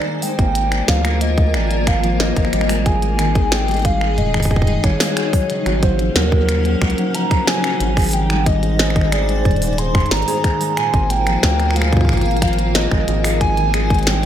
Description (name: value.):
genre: IDM.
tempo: 91 BPM.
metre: 4/4.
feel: straight.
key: Ab major.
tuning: A4 = 440 Hz.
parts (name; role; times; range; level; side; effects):
warbly nostalgic lead; melody; 0.0-14.3 s; Bb4 to C6; -22 LUFS; right 1 dB; wide subtle chorus, vintage 12-bit sampler grit, dub echo.
granular cloud pad; sustained chords; 0.0-14.3 s; Bb3 to Gb5; -25 LUFS; left 2 dB; built-in reverb, sidechain pumping.
concert harp; arpeggios; 0.0-14.3 s; Ab2 to Bb4; -23 LUFS; left 1 dB; dub echo.
glitchy drum kit; drums; 0.0-14.3 s; finger snaps, hi-hat, snare drum, toms; -22 LUFS; equal; none.
round analog bass; bass; 0.4-14.3 s; Eb1 to Eb2; -19 LUFS; equal; none.
electronic kick drum; drums; 0.4-14.0 s; none; -18 LUFS; equal; none.
room: light reverb.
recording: echo-heavy mix.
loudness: -14 LUFS.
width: side -10 dB against mid.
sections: 0.0-14.3 A section.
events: none.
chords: 0.0 Bb7/Ab; 2.5 Ab5; 5.2 Gb6/Ab; 7.8 Abmaj7; 10.4 Bb7/Ab; 13.1 Abmaj7.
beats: 0.55 1.21 1.87 | 2.53 3.19 3.85 4.51 | 5.17 5.83 6.49 7.14 | 7.80 8.46 9.12 9.78 | 10.44 11.10 11.76 12.42 | 13.08 13.74.